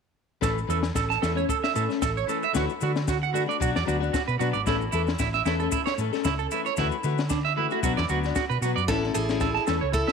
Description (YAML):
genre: highlife guitar band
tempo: 114 BPM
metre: 4/4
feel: swing 54% on 16ths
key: A major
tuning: A4 = 440 Hz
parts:
  - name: nylon-string guitar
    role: accompaniment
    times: 0.4-9.9 s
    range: E3 to A4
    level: -30 LUFS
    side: left 12 dB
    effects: none
  - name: electric guitar at the edge of break-up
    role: arpeggios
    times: 0.4-10.1 s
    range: D4 to A5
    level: -27 LUFS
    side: right 12 dB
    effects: tape echo
  - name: hollow-body short-scale fingered electric bass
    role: bass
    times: 0.4-10.0 s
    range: G#1 to D3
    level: -28 LUFS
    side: equal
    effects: none
  - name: compact cocktail drum kit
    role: drums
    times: 0.4-10.1 s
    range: kick drum, snare drum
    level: -31 LUFS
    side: left 4 dB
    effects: none
  - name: maracas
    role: percussion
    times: 0.4-10.1 s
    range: none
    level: -40 LUFS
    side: left 15 dB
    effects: none
  - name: picked steel-string acoustic guitar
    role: melody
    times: 8.9-10.1 s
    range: E4 to A4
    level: -28 LUFS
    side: equal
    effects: none
room: moderate echo chamber reverb, RT60 2.5 s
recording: 1960s-style stereo with parts hard left and right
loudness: -23 LUFS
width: side -6 dB against mid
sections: 0.4-8.9 A section; 8.9-10.1 B section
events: none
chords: 0.4 A; 2.5 Dadd9; 3.6 Bm; 4.7 A; 6.8 Dadd9; 7.8 Bm; 8.9 A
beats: | 0.43 0.96 1.49 2.02 | 2.55 3.08 3.61 4.14 | 4.67 5.19 5.72 6.25 | 6.78 7.31 7.83 8.36 | 8.89 9.42 9.94